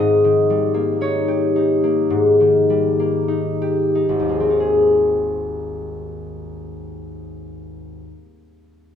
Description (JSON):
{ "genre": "classical, solo harp piece", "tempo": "43-62 BPM", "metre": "4/4", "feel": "rubato", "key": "Ab major", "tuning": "A4 = 440 Hz", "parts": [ { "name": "concert harp", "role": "solo", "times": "0.0-8.1 s", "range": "Ab1 to F5", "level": "-17 LUFS", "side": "left 1 dB", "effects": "none" } ], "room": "moderate stone room reverb, RT60 1.2 s", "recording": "minimal, uncompressed stereo recording", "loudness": "-15 LUFS", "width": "side -8 dB against mid", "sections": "0.0-4.6 A section; 4.6-9.0 B section", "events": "slowing down 0.0-4.6", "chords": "0.0 Eb7/Ab; 4.6 Ab" }